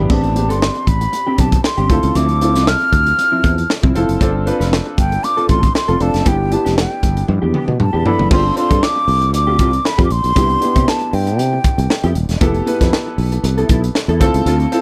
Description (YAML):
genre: polished 1980s jazz-funk pop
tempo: 117 BPM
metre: 4/4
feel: swing 54% on 16ths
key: unclear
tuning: A4 = 440 Hz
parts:
  - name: warm grand piano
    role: accompaniment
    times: 0.0-14.8 s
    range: B3 to B5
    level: -23 LUFS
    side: equal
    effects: lush chorus
  - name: mellow electric guitar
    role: riff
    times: 0.0-14.8 s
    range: F3 to B4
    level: -24 LUFS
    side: equal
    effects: ensemble chorus
  - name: sustaining fretless electric bass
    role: bass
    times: 0.0-14.6 s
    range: D#1 to C3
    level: -20 LUFS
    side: equal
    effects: none
  - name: breathy mellow silver concert flute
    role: melody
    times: 0.1-12.2 s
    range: G5 to F6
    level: -21 LUFS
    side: equal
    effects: none
  - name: crisp fusion drum kit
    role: drums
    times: 0.1-14.8 s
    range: crash cymbal, hi-hat, kick drum, snare drum, splash cymbal, toms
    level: -20 LUFS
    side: equal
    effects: none
room: light reverb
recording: none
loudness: -15 LUFS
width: mono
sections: 0.0-8.3 A section; 8.3-14.8 B section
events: drum fill 7.3-8.3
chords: 0.1 Am11; 1.9 Dm9; 4.2 G9sus4; 6.3 Em7; 8.3 G7sus4; 10.4 Cmaj7; 12.4 Fmaj9#11; 14.2 Dm7